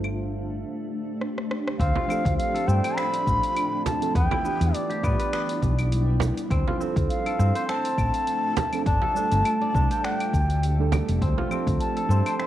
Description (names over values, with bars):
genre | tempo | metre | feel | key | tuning
organic downtempo | 102 BPM | 4/4 | swing 55% on 16ths | D dorian | A4 = 440 Hz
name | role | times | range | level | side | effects
muted felt-like synth keys | accompaniment | 0.0-12.5 s | E3 to A4 | -32 LUFS | right 8 dB | chorus, sidechain pumping, analog delay
granular cloud pad | sustained chords | 0.0-12.5 s | G3 to G5 | -32 LUFS | left 1 dB | built-in reverb, sidechain pumping
woody fretless electric bass | bass | 0.0-12.2 s | F1 to A2 | -23 LUFS | equal | sidechain pumping
deep house drum kit | drums | 0.0-12.5 s | claves, finger snaps, hi-hat, rim click, shaker | -35 LUFS | left 1 dB | overdrive, studio reverb, cassette tape
breathy bansuri | melody | 1.8-12.5 s | D5 to C6 | -27 LUFS | left 1 dB | cassette tape, tape echo
kora | arpeggios | 1.8-12.5 s | B3 to G5 | -32 LUFS | equal | analog delay
electronic kick drum | drums | 1.8-11.8 s | none | -27 LUFS | equal | overdrive, studio reverb, cassette tape
frame drum | percussion | 2.0-11.5 s | none | -29 LUFS | right 5 dB | none
room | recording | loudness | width
light reverb, digital ambience | home recording on cassette | -22 LUFS | side -12 dB against mid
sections
0.0-1.8 A section; 1.8-12.5 B section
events
filter sweep on drum 0.0-1.8; drum fill 1.2-1.8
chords
0.0 Gsus2; 1.8 Dm7; 4.2 Em7; 6.5 Dm7; 8.9 Gsus2; 11.2 Dm7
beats
0.04 0.62 1.21 | 1.80 2.39 2.98 3.57 | 4.16 4.74 5.33 5.92 | 6.51 7.10 7.68 8.27 | 8.86 9.45 10.04 10.62 | 11.21 11.80 12.39